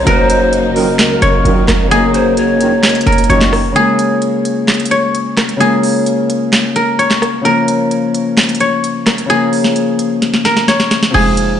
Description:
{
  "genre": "hip hop, trap",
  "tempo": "130 BPM",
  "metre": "4/4",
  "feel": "half-time",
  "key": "Db major",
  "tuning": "A4 = 440 Hz",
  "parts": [
    { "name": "guzheng", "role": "melody", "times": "0.0-11.6 s", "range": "Ab4 to Db5", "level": "-16 LUFS", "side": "equal", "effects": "low-pass filter, ping-pong delay" },
    { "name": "breathy large pan pipes", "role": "second line", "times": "0.0-3.3 s", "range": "Bb4 to Db5", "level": "-18 LUFS", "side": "equal", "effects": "ping-pong delay" },
    { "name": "Celtic harp", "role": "accompaniment", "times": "0.0-11.6 s", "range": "C3 to Bb4", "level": "-15 LUFS", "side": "left 3 dB", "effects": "low-pass filter" },
    { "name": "warm symphonic string section", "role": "sustained chords", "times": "0.0-3.7 s", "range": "Db3 to Eb4", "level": "-21 LUFS", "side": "right 2 dB", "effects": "none" },
    { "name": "short 808-style bass", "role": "bass", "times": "0.0-3.7, 11.1-11.6 s", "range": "F1 to Db2", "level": "-16 LUFS", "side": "right 1 dB", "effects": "none" },
    { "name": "trap drum kit", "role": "drums", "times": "0.1-11.5 s", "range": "crash cymbal, handclaps, hi-hat, rim click, snare drum", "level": "-15 LUFS", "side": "equal", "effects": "overdrive" },
    { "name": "mellow brass ensemble", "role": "stabs", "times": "0.8-3.6 s", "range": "Gb2 to Eb3", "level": "-22 LUFS", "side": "right 6 dB", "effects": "none" }
  ],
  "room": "studio reverb",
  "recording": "played on a big sound system in a bare room, stone room reverb, nothing above 10.3 kHz",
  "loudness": "-10 LUFS",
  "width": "side -9 dB against mid",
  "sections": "0.0-3.8 A section; 3.8-11.6 B section",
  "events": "kick muted 3.8-11.1; drum fill 10.2-11.1",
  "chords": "0.1 Gb6; 3.8 Db6; 7.5 Bbm",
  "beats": "| 0.07 0.53 0.99 1.45 | 1.91 2.37 2.83 3.30 | 3.76 4.22 4.68 5.14 | 5.61 6.07 6.53 6.99 | 7.45 7.91 8.37 8.84 | 9.30 9.76 10.22 10.68 | 11.14"
}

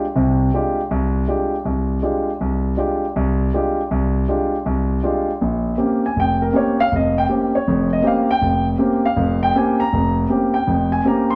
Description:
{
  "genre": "jazz",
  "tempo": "160 BPM",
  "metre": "4/4",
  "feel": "swing 66% on 8ths",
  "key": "F dorian, Bb dorian from 5.4 s",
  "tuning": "A4 = 440 Hz",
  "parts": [
    { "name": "warm concert grand piano", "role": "solo", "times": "0.0-11.4 s", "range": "F1 to C6", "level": "-19 LUFS", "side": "equal", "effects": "none" }
  ],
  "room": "wet stone room reverb, RT60 1.5 s",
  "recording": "band playing live in one room",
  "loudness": "-19 LUFS",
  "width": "mono",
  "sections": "0.0-5.4 A section; 5.4-11.4 B section",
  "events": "none",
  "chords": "0.0 Fm69; 5.4 Bbm69",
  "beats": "0.16 0.53 | 0.91 1.28 1.66 2.04 | 2.41 2.79 3.16 3.54 | 3.91 4.29 4.66 5.04 | 5.41 5.79 6.16 6.54 | 6.91 7.29 7.66 8.04 | 8.41 8.79 9.16 9.54 | 9.92 10.29 10.67 11.04"
}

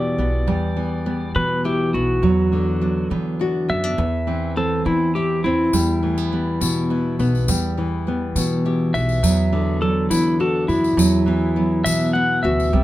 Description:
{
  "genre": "acoustic folk duo or small band",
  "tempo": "68 BPM (dotted quarters)",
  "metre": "6/8",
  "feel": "straight",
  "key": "E minor",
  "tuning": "A4 = 440 Hz",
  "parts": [
    { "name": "pedal steel guitar", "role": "melody", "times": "0.0-12.8 s", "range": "E4 to F#5", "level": "-22 LUFS", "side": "equal", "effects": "none" },
    { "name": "nylon-string guitar", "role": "accompaniment", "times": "0.0-12.8 s", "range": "E2 to G4", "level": "-24 LUFS", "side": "left 3 dB", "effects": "none" },
    { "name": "picked steel-string acoustic guitar", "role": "arpeggios", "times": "0.0-12.8 s", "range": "E3 to E4", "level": "-24 LUFS", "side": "right 3 dB", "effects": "none" },
    { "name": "upright bass", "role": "bass", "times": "0.0-12.8 s", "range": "B1 to E3", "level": "-23 LUFS", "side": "equal", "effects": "none" },
    { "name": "tambourine", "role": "percussion", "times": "5.7-12.7 s", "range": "none", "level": "-29 LUFS", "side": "left 5 dB", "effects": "none" }
  ],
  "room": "little or no reverb",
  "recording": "close, detailed microphones",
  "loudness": "-17 LUFS",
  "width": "side -15 dB against mid",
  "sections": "0.0-12.7 A section",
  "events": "pedal steel guitar solo 0.0-12.7",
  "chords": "0.0 Em; 2.2 Bm/E; 4.0 Am/E (rootless); 5.7 Em; 9.2 Bm/E; 11.0 Esus2",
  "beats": "| 0.47 1.35 | 2.23 3.10 | 3.98 4.86 | 5.73 6.61 | 7.48 8.36 | 9.23 10.11 | 10.98 11.86 | 12.73"
}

